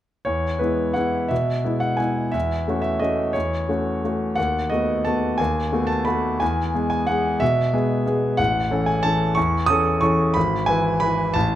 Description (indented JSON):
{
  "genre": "classical, piano waltz",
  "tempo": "167-190 BPM",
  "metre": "3/4",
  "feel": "rubato",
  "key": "E major",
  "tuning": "A4 = 440 Hz",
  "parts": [
    { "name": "clear grand piano", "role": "solo", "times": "0.2-11.6 s", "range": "G#1 to D#6", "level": "-19 LUFS", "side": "equal", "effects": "none" }
  ],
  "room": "moderate recital hall reverb, RT60 1.6 s",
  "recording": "close, detailed microphones",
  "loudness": "-19 LUFS",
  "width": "side -12 dB against mid",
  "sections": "0.3-11.6 A section",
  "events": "none",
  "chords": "0.3 E; 2.3 F#m7/E; 4.4 B7/D#; 6.4 E; 8.4 A; 10.4 E/G#"
}